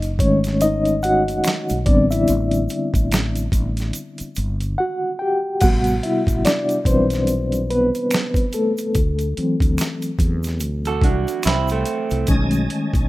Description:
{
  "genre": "R&B, neo-soul",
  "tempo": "72 BPM",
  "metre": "4/4",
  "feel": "swing 59% on 16ths",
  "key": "A dorian",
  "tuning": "A4 = 439 Hz",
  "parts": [
    { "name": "reed electric piano", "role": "accompaniment", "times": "0.0-13.1 s", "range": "C3 to G5", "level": "-20 LUFS", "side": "left 1 dB", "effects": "tremolo" },
    { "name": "mellow fretless electric bass", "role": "bass", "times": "0.0-13.1 s", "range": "F#1 to E2", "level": "-22 LUFS", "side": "equal", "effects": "none" },
    { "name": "boom bap sampler-style drum kit", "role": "drums", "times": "0.0-13.1 s", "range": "crash cymbal, hi-hat, kick drum, snare drum", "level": "-21 LUFS", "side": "equal", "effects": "none" },
    { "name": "egg shaker and finger snaps", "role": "percussion", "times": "0.0-13.1 s", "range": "none", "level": "-33 LUFS", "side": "right 3 dB", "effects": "none" },
    { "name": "electric guitar through a small old amp", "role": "second line", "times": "10.9-12.3 s", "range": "A3 to A4", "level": "-23 LUFS", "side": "right 5 dB", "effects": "none" },
    { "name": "percussive tonewheel organ", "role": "sustained chords", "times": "12.3-13.1 s", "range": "C#4 to A5", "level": "-29 LUFS", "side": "right 1 dB", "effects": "fast rotary speaker, overdrive, chorus vibrato" }
  ],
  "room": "digital ambience",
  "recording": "rough home demo mix",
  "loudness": "-17 LUFS",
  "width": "side -18 dB against mid",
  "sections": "0.0-5.6 A section; 5.6-13.1 B section",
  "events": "reed electric piano solo 0.0-5.6, 5.6-13.1; drums muted 4.8-5.6",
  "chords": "0.0 B13 (rootless); 1.9 Am11; 5.6 Am9; 8.9 D9; 12.3 B13"
}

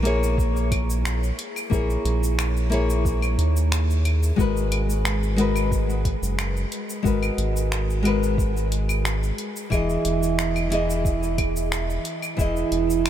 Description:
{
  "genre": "sunset chillout",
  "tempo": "90 BPM",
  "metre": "4/4",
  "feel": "straight",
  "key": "G# minor",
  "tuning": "A4 = 440 Hz",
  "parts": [
    { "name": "nylon-string guitar", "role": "accompaniment", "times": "0.0-13.1 s", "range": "E3 to D#5", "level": "-25 LUFS", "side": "moving between left 5 dB and right 5 dB", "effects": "auto-pan, diffuse ambient delay" },
    { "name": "round analog bass", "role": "bass", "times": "0.0-13.1 s", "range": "E1 to D#2", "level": "-23 LUFS", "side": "equal", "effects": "none" },
    { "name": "deep house drum kit", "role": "drums", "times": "0.1-13.1 s", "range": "cabasa, claves, finger snaps, hi-hat", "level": "-31 LUFS", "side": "equal", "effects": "none" },
    { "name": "electronic kick drum", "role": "drums", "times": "0.4-12.5 s", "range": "none", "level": "-24 LUFS", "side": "equal", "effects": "none" }
  ],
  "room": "light reverb, digital ambience",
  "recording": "none",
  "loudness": "-21 LUFS",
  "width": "side -11 dB against mid",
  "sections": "0.0-13.1 A section",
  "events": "none",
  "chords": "0.0 A#m7b5; 4.4 G#m9; 9.7 Emaj7"
}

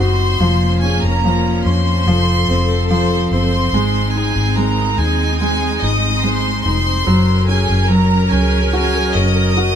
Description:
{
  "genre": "pop ballad",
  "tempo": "72 BPM",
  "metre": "4/4",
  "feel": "straight",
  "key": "unclear",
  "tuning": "A4 = 439 Hz",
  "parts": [
    { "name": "warm studio violin section", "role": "melody", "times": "0.0-9.8 s", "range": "Ab4 to Eb6", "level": "-19 LUFS", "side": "equal", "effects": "none" },
    { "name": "clear baby grand piano", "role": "accompaniment", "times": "0.0-9.8 s", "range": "F3 to Gb4", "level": "-19 LUFS", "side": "equal", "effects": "none" },
    { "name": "clear studio string section", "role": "sustained chords", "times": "0.0-9.8 s", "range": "C3 to Bb4", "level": "-22 LUFS", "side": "right 1 dB", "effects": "none" },
    { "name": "vintage muted fingered electric bass", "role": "bass", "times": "0.0-9.8 s", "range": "F1 to F2", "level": "-17 LUFS", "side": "equal", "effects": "none" }
  ],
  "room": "light reverb",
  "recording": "band playing live in one room",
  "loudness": "-13 LUFS",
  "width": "side -9 dB against mid",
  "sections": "0.0-9.8 A section",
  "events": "none",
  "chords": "0.4 Bbm/F; 2.1 F; 3.7 Ab; 7.1 Gb"
}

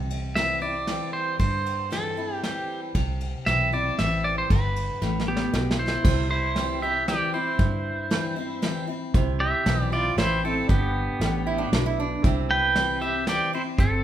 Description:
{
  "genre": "honky-tonk and classic country",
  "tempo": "116 BPM",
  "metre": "3/4",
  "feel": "straight",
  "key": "C major",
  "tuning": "A4 = 440 Hz",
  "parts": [
    { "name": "picked steel-string acoustic guitar", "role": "accompaniment", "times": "0.0-14.0 s", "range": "G2 to E4", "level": "-32 LUFS", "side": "left 3 dB", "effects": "none" },
    { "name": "vintage muted fingered electric bass", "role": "bass", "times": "0.0-14.0 s", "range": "G1 to G2", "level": "-28 LUFS", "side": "equal", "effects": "none" },
    { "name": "soft brush drum kit", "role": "drums", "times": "0.1-13.9 s", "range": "crash cymbal, hi-hat, kick drum, ride cymbal, snare drum", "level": "-26 LUFS", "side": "equal", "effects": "none" },
    { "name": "pedal steel guitar", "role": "melody", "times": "0.4-14.0 s", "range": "B3 to G5", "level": "-25 LUFS", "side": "right 1 dB", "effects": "none" },
    { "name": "bright baby grand piano", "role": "accompaniment", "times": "6.0-14.0 s", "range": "D4 to E5", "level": "-37 LUFS", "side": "right 6 dB", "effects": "none" },
    { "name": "lap resonator guitar", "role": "second line", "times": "11.5-12.5 s", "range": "C4 to E4", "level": "-29 LUFS", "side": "right 4 dB", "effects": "none" }
  ],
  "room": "moderate recital hall reverb, RT60 1.4 s",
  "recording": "minimal, uncompressed stereo recording",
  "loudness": "-22 LUFS",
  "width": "side -11 dB against mid",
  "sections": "0.0-6.0 A section; 6.0-14.0 B section",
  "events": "drum fill 5.0-6.0",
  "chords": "0.0 C; 4.5 G; 6.0 C; 10.7 G; 12.2 C"
}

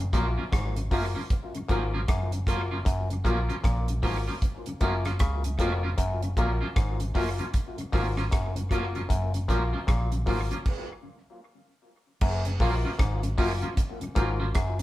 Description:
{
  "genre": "roots reggae",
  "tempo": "77 BPM",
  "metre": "4/4",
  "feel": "swing 61% on 16ths",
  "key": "F# major",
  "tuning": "A4 = 439 Hz",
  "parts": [
    { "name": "mellow tonewheel organ", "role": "accompaniment", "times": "0.0-14.8 s", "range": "F#2 to E#4", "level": "-36 LUFS", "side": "left 2 dB", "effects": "overdrive, chorus vibrato, slow rotary speaker, tape echo" },
    { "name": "vintage muted fingered electric bass", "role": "bass", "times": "0.0-14.8 s", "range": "E#1 to C#2", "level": "-29 LUFS", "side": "equal", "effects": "none" },
    { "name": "twangy electric guitar", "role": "accompaniment", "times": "0.1-14.5 s", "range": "E#3 to E#4", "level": "-34 LUFS", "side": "right 3 dB", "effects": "none" },
    { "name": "bright clav", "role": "riff", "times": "0.1-14.8 s", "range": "E#2 to C#3", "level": "-36 LUFS", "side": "left 2 dB", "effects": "tape echo" },
    { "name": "warm grand piano", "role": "stabs", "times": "0.1-14.5 s", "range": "E#4 to A#4", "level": "-35 LUFS", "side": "left 3 dB", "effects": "none" },
    { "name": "damped 70s drum kit", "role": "drums", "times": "0.1-14.8 s", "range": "crash cymbal, hi-hat, kick drum, rim click", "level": "-28 LUFS", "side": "equal", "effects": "none" }
  ],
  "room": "moderate stone room reverb, RT60 1.0 s",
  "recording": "band playing live in one room",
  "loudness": "-25 LUFS",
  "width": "side -16 dB against mid",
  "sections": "0.0-12.2 A section; 12.2-14.8 B section",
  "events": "stop 10.7-12.2",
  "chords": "0.0 F#maj7"
}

